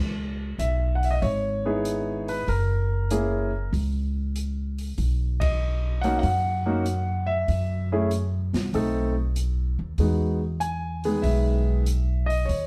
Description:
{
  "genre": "jazz piano trio",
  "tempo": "96 BPM",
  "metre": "4/4",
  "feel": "swing 69% on 8ths",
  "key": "unclear",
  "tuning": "A4 = 440 Hz",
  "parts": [
    { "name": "upright bass", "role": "bass", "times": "0.0-12.7 s", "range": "F#1 to F#2", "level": "-27 LUFS", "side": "equal", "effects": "none" },
    { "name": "warm concert grand piano", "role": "melody", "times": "0.6-12.7 s", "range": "D#3 to G#5", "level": "-29 LUFS", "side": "equal", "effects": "none" },
    { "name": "open jazz drum kit", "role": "drums", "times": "0.6-12.7 s", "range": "hi-hat, kick drum, ride cymbal, snare drum", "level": "-35 LUFS", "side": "equal", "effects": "none" }
  ],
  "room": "moderate studio reverb, RT60 0.9 s",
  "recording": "heard from further back in the room",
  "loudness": "-25 LUFS",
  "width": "mono",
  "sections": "0.0-12.7 A section",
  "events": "band accent 5.3-5.6",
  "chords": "0.0 C#m9; 2.5 F#; 5.0 B; 7.5 F#7(no3); 8.7 B7b9; 10.0 Emaj7"
}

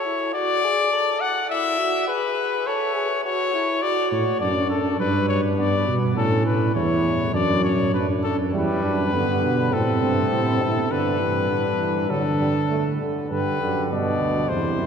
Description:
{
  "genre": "classical, imitative canzona for brass ensemble",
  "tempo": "102 BPM",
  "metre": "4/4",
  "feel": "straight",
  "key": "D major, G major from 8.5 s",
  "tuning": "A4 = 440 Hz",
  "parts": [
    { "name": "bright trumpet", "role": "melody", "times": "0.0-14.9 s", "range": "A4 to F#5", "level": "-24 LUFS", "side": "left 5 dB", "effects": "none" },
    { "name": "mellow flugelhorn", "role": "second line", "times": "0.0-14.9 s", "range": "B3 to A4", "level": "-27 LUFS", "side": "right 4 dB", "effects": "none" },
    { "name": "mellow tuba", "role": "bass", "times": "4.1-14.9 s", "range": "D2 to D3", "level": "-23 LUFS", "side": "right 1 dB", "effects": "none" },
    { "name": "bright trombone", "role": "accompaniment", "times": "8.5-14.9 s", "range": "B2 to A3", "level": "-26 LUFS", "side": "right 2 dB", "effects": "none" }
  ],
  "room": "wet cathedral reverb, RT60 6.1 s",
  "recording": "heard from further back in the room",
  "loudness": "-20 LUFS",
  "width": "side -7 dB against mid",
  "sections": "0.0-8.5 A section; 8.5-13.3 B section; 13.3-14.9 C section",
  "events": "none",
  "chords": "0.3 D/F#; 1.5 E; 2.7 A; 3.8 D; 5.0 G; 6.2 A; 7.3 D/F#; 8.5 Em; 9.7 Am; 10.9 Dsus4/G; 12.1 D5; 13.3 G"
}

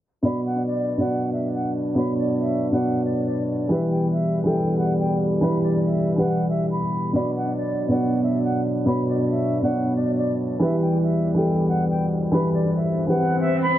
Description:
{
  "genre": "hip hop",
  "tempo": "139 BPM",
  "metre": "4/4",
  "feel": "half-time",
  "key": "B minor",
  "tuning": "A4 = 441 Hz",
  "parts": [
    { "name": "silver concert flute", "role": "melody", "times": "0.2-13.8 s", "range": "D5 to B5", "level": "-29 LUFS", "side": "equal", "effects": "dub echo" },
    { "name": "dark grand piano", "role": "accompaniment", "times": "0.2-13.8 s", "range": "B2 to D5", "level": "-22 LUFS", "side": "equal", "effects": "dub echo" },
    { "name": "mellow brass ensemble", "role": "sustained chords", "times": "0.2-13.8 s", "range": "E2 to D4", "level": "-26 LUFS", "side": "left 1 dB", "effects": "none" },
    { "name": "swell", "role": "sound effects", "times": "12.5-13.8 s", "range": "none", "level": "-28 LUFS", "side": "left 2 dB", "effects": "none" }
  ],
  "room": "light reverb, small room reverb",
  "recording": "echo-heavy mix, low-pass filter",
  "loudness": "-20 LUFS",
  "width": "side -12 dB against mid",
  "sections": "0.2-13.8 A section",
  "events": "filter sweep 0.2-13.8; swell 12.5-13.8",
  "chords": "0.2 Bm; 3.7 Em; 7.1 Bm; 10.6 Em"
}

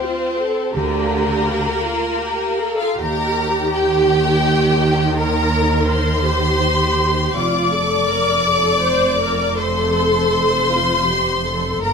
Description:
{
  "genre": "classical, slow romantic movement for string orchestra",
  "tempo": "54 BPM (dotted quarters)",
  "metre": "12/8",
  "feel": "rubato",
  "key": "unclear",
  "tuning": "A4 = 436 Hz",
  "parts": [
    { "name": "rich studio violin section", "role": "melody", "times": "0.0-11.9 s", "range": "Bb3 to D5", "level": "-23 LUFS", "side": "left 3 dB", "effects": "none" },
    { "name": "warm studio violin section", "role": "second line", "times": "0.0-11.9 s", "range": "Bb4 to D6", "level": "-20 LUFS", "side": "left 2 dB", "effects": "none" },
    { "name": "warm studio viola section", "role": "accompaniment", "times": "0.0-11.9 s", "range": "F4 to C5", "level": "-21 LUFS", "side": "right 1 dB", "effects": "none" },
    { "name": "rich studio double bass section", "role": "bass", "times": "0.7-11.9 s", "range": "F1 to Eb2", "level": "-24 LUFS", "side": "right 3 dB", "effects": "none" },
    { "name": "warm studio cello section", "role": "bass", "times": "0.7-11.9 s", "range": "F2 to Eb3", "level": "-24 LUFS", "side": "right 2 dB", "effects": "none" }
  ],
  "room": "moderate scoring stage reverb, RT60 1.5 s",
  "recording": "none",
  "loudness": "-15 LUFS",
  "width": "side -6 dB against mid",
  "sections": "0.0-11.9 A section",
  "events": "none",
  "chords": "0.0 Bb/D; 3.0 Cm7/Eb; 7.4 F"
}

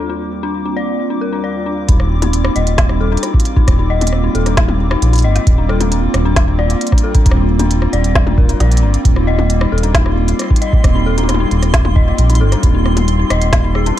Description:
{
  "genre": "IDM",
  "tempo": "134 BPM",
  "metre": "4/4",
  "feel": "straight",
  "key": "unclear",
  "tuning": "A4 = 440 Hz",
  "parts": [
    { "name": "hollow soft pad", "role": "sustained chords", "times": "0.0-14.0 s", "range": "Eb2 to D6", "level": "-20 LUFS", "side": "right 2 dB", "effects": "chorus, sidechain pumping" },
    { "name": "dark detuned synth bell", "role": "arpeggios", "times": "0.0-13.9 s", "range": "Db4 to Eb5", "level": "-21 LUFS", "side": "left 6 dB", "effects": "chorus, vintage 12-bit sampler grit, tape echo" },
    { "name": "round analog bass", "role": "bass", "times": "1.9-13.9 s", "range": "Eb1 to Bb1", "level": "-14 LUFS", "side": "equal", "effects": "none" },
    { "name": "electronic kick drum", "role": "drums", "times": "1.9-13.6 s", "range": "none", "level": "-12 LUFS", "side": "equal", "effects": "small room ambience" },
    { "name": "organic electronic drum kit", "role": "drums", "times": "1.9-14.0 s", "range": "hi-hat, rim click, snare drum, toms", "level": "-21 LUFS", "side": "left 1 dB", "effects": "small room ambience, ping-pong delay" },
    { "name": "twinkling granular texture", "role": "texture", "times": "10.1-14.0 s", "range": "C6", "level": "-27 LUFS", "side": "right 2 dB", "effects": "built-in reverb, sidechain pumping" }
  ],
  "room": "digital ambience",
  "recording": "dark, warm production",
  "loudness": "-11 LUFS",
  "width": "side -12 dB against mid",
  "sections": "0.0-1.9 A section; 1.9-14.0 B section",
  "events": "filter sweep on analog synth pad 0.0-1.9",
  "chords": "0.0 Bbadd9/Eb; 12.6 Dbmaj9#11/Eb (rootless)"
}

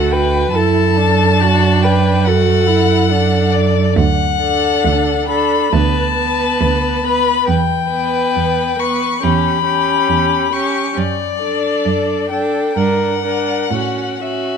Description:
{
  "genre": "classical, slow romantic movement for string quartet",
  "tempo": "69 BPM",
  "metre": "4/4",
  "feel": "uneven beats, rubato",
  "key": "D major",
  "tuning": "A4 = 440 Hz",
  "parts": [
    { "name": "rich violin", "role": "melody", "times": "0.0-14.6 s", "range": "D5 to C#6", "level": "-18 LUFS", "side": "left 8 dB", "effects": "none" },
    { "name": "rich violin", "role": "second line", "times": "0.0-14.6 s", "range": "F#4 to B4", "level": "-19 LUFS", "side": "left 2 dB", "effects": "none" },
    { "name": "warm viola", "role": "accompaniment", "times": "0.0-14.6 s", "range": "B3 to F#4", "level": "-21 LUFS", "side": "right 4 dB", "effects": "none" },
    { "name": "rich cello", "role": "bass", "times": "0.0-14.6 s", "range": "D2 to A2", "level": "-17 LUFS", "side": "right 5 dB", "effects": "none" }
  ],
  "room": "light reverb",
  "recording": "close, detailed microphones",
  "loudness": "-13 LUFS",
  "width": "side -6 dB against mid",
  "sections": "0.0-14.6 A section",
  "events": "none",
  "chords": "0.0 D; 0.5 D/F#; 4.0 D; 5.7 Bm/D; 7.5 Em; 9.2 C#dim/E; 11.0 D/F#; 12.8 Gmmaj7; 13.7 A6"
}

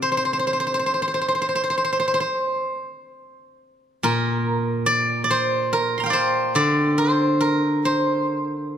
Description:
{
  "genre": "chinese traditional, Chinese solo plucked strings",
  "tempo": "69-76 BPM",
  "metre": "4/4",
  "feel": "rubato",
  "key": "unclear",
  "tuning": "A4 = 442 Hz",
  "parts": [
    { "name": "steel-string zither", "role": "solo", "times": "0.0-8.8 s", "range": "Bb2 to C6", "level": "-19 LUFS", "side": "equal", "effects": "none" }
  ],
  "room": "moderate recital hall reverb, RT60 1.7 s",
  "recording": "none",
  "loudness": "-19 LUFS",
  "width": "side -9 dB against mid",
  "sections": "0.0-8.8 A section",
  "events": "none",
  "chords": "none"
}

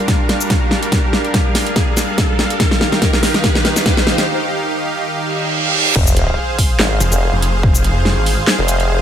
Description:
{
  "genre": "heavy wobble dubstep",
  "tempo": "143 BPM",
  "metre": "4/4",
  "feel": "swing 55% on 16ths, half-time",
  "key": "F dorian",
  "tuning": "A4 = 440 Hz",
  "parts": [
    { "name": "supersaw pad", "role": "sustained chords", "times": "0.0-9.0 s", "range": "Eb3 to F5", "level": "-20 LUFS", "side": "right 1 dB", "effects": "sidechain pumping" },
    { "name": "riser, reverse cymbal and sub drop", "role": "sound effects", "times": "0.0-7.6 s", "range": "none", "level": "-21 LUFS", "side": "right 1 dB", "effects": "none" },
    { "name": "dubstep drum kit", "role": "drums", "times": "0.1-8.9 s", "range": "crash cymbal, handclaps, hi-hat, shaker, snare drum", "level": "-17 LUFS", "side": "equal", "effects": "studio reverb" },
    { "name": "electronic kick drum", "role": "drums", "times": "0.1-7.7 s", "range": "none", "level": "-16 LUFS", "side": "equal", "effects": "studio reverb" },
    { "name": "formant-sweep wobble bass", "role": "bass", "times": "6.0-9.0 s", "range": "F1 to Ab1", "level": "-16 LUFS", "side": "equal", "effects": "chorus, overdrive" },
    { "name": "snarling distorted saw bass", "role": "bass", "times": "7.0-8.4 s", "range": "F1 to Ab1", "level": "-16 LUFS", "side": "equal", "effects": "distortion, overdrive" }
  ],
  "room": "light reverb, digital ambience",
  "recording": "none",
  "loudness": "-13 LUFS",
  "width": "side -9 dB against mid",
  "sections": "0.0-6.0 A section; 6.0-9.0 B section",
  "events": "build-up 0.0-6.0; drum fill 0.0-4.3; riser 0.0-4.3; break 4.3-6.0; reverse cymbal 5.3-6.0; drop 6.0-9.0; impact 6.0-7.6",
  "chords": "0.0 Gm7; 2.6 Ebadd9; 6.0 Fm"
}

